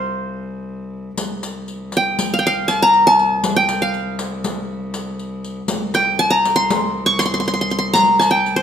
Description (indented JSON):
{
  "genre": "Turkish makam ensemble",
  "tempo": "239 BPM (eighths)",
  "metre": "9/8",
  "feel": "straight",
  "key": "C makam hicaz",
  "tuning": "A4 = 439 Hz",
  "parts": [
    { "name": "qanun", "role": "melody", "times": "0.0-8.6 s", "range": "C5 to Db6", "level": "-15 LUFS", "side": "equal", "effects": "none" },
    { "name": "rich cello", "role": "drone", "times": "0.0-8.6 s", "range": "C2", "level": "-27 LUFS", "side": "left 1 dB", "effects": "none" },
    { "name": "riq", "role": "percussion", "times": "1.2-8.5 s", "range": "none", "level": "-25 LUFS", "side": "left 2 dB", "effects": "none" }
  ],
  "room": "moderate recital hall reverb, RT60 1.5 s",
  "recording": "minimal, uncompressed stereo recording",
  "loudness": "-15 LUFS",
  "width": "side -8 dB against mid",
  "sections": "0.0-8.6 A section",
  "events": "none",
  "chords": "none"
}